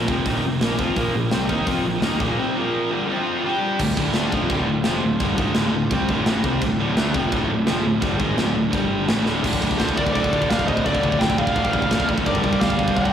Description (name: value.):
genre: heavy metal.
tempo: 170 BPM.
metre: 4/4.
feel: straight.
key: D phrygian.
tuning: A4 = 440 Hz.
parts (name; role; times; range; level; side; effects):
distorted electric guitar; riff; 0.0-13.1 s; D2 to G4; -23 LUFS; left 2 dB; distortion.
scooped high-gain guitar; riff; 0.0-13.1 s; D2 to G4; -26 LUFS; right 5 dB; distortion.
picked electric bass; bass; 0.0-13.1 s; D1 to F2; -28 LUFS; equal; none.
tight metal drum kit; drums; 0.1-13.1 s; china cymbal, crash cymbal, hi-hat, kick drum, snare drum; -24 LUFS; equal; none.
pipe organ, full organ; sustained chords; 3.8-13.1 s; D3 to A5; -32 LUFS; equal; none.
high-gain lead guitar; melody; 9.8-13.1 s; C5 to G5; -23 LUFS; equal; distortion, tape echo.
high-gain lead guitar; second line; 9.8-13.1 s; A4 to D5; -31 LUFS; right 4 dB; distortion.
room: wet cathedral reverb, RT60 5.2 s.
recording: rough rehearsal-room recording, warm saturation.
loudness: -18 LUFS.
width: side -9 dB against mid.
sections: 0.0-3.8 A section; 3.8-9.4 B section; 9.4-13.1 C section.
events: drum fill 9.3.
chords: 0.0 F5; 1.0 Bb5; 3.1 F5; 3.4 G5; 3.8 Dm; 8.7 G5; 9.1 Dm; 12.3 Gm.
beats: 0.26 0.61 | 0.96 1.32 1.67 2.02 | 2.38 2.73 3.08 3.44 | 3.79 4.14 4.50 4.85 | 5.20 5.55 5.91 6.26 | 6.61 6.97 7.32 7.67 | 8.03 8.38 8.73 9.08 | 9.44 9.79 10.14 10.49 | 10.85 11.20 11.55 11.90 | 12.26 12.61 12.96.